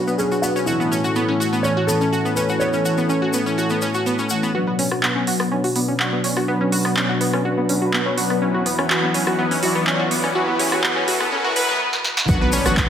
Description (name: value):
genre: progressive house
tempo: 124 BPM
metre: 4/4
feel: straight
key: B minor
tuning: A4 = 439 Hz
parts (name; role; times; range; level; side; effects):
- dark grand piano; melody; 0.0-4.0 s; E4 to C#5; -24 LUFS; right 1 dB; vintage 12-bit sampler grit, sidechain pumping, tape echo
- lush unison pad; sustained chords; 0.0-12.9 s; E2 to F#5; -26 LUFS; equal; chorus, sidechain pumping
- analog pluck; arpeggios; 0.0-12.8 s; B3 to F#5; -22 LUFS; right 1 dB; chorus, cassette tape, sidechain pumping, tape echo
- soft supersaw; stabs; 0.0-12.9 s; E3 to D5; -24 LUFS; left 3 dB; phaser, cassette tape, sidechain pumping, low-pass filter, tape echo
- tube shaker; percussion; 0.1-4.5, 12.3-12.9 s; none; -30 LUFS; left 4 dB; none
- riser and impact; sound effects; 7.5-12.9 s; none; -29 LUFS; equal; none
- deep house drum kit; drums; 4.8-12.9 s; handclaps, hi-hat, rim click, snare drum; -22 LUFS; right 1 dB; high-pass filter on hats, high-pass filter on snare, high-pass filter on room
- saturated sub bass; bass; 12.3-12.9 s; A1 to B1; -24 LUFS; equal; sidechain pumping
- electronic kick drum; drums; 12.3-12.9 s; none; -19 LUFS; equal; none
room: moderate digital room reverb, RT60 1.1 s, digital ambience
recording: high-pass filter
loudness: -17 LUFS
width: side -9 dB against mid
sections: 0.0-4.5 A section; 4.5-12.3 B section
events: filter sweep on analog synth pad 0.0-4.5, 4.5-12.3; build-up 4.5-12.3; filter sweep on synth pluck 4.5-12.3; filter sweep on supersaw synth 4.5-12.3; riser 7.5-11.8; drum fill 11.9-12.3; impact 12.3-12.9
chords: 0.0 Bm; 0.7 A; 4.5 Bm; 8.4 Esus2; 12.3 Bm